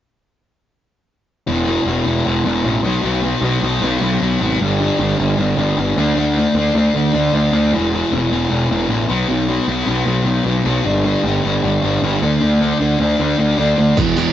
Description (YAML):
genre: punk rock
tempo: 154 BPM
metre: 4/4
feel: straight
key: unclear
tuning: A4 = 444 Hz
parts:
  - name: sludgy distorted guitar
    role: riff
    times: 1.5-14.3 s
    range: E2 to D4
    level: -16 LUFS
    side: left 1 dB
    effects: overdrive
  - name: fuzz picked electric bass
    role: bass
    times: 1.5-14.3 s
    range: E1 to D2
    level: -19 LUFS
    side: right 1 dB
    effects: overdrive
  - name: sludgy distorted guitar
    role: riff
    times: 14.0-14.3 s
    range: E2 to E3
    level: -17 LUFS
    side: right 8 dB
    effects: overdrive
  - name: 80s electronic pad drums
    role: drums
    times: 14.0-14.3 s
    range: hi-hat, kick drum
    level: -20 LUFS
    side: equal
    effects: none
room: light reverb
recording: rough rehearsal-room recording, tube saturation, nothing above 7.5 kHz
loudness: -14 LUFS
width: side -11 dB against mid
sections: 1.5-14.3 A section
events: none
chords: 1.5 E5; 2.8 B5; 4.6 G5; 6.0 D5; 7.7 E5; 9.1 B5; 10.8 G5; 12.2 D5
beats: | 1.48 1.87 2.26 2.65 | 3.04 3.43 3.82 4.21 | 4.60 4.99 5.38 5.77 | 6.16 6.55 6.94 7.33 | 7.72 8.11 8.50 8.89 | 9.28 9.68 10.06 10.46 | 10.85 11.23 11.62 12.02 | 12.40 12.79 13.19 13.57 | 13.96